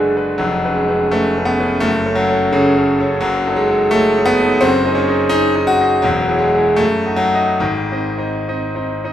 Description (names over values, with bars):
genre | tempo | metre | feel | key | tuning
classical, romantic character piece for solo piano | 70-88 BPM | 2/4 | rubato | F# minor | A4 = 442 Hz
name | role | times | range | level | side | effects
bright concert grand piano | solo | 0.0-9.1 s | E1 to D#5 | -13 LUFS | equal | none
room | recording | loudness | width
wet recital hall reverb, RT60 1.3 s | recorded in a church or concert hall | -13 LUFS | side -11 dB against mid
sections
0.0-9.1 A section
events
none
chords
0.4 C#7/E#; 1.8 F#m; 3.2 D#m7b5/F#; 4.6 G#5/F#; 6.0 C#m/E; 6.8 D#dim/F#; 7.6 G#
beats
| 0.41 1.12 | 1.84 2.55 | 3.25 3.95 | 4.63 5.33 | 6.04 6.79 | 7.61 8.46